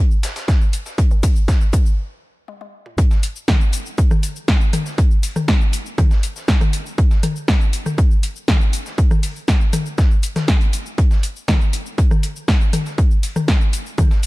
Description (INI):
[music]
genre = techno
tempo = 120 BPM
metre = 4/4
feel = straight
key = none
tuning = none
[part]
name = techno drum kit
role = drums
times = 0.1-14.3 s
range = hi-hat, rim click, shaker, snare drum, toms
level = -22 LUFS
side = left 1 dB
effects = overdrive, high-pass filter on perc, high-pass filter on snare, high-pass filter on toms, high-pass filter on hats
[part]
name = dusty soul sampler-style drum kit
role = drums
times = 0.2-14.3 s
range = hi-hat, snare drum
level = -34 LUFS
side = equal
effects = overdrive, high-pass filter on hats, high-pass filter on snare, high-pass filter on room
[part]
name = electronic kick drum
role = drums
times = 0.5-14.1 s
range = none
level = -15 LUFS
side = equal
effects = overdrive
[sound]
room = digital ambience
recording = dark, warm production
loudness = -15 LUFS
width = side -21 dB against mid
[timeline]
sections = 0.0-3.0 A section; 3.0-14.3 B section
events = build-up 0.0-3.0; drum fill 0.0-2.0, 2.5-3.0; stop 2.0-3.0; drop 3.0-14.3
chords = none